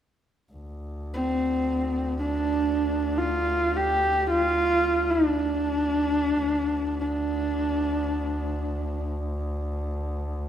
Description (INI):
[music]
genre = mongolian traditional, Mongolian folk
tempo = free time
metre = none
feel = none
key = D yu mode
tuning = A4 = 440 Hz
[part]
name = warm double bass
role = drone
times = 0.5-10.5 s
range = D2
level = -31 LUFS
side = equal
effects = none
[part]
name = dark horsehead fiddle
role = melody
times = 1.1-9.1 s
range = C4 to G4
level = -24 LUFS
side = equal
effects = none
[sound]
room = wet recital hall reverb, RT60 1.4 s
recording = none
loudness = -23 LUFS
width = side -10 dB against mid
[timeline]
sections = 0.5-10.5 A section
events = none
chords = none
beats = free time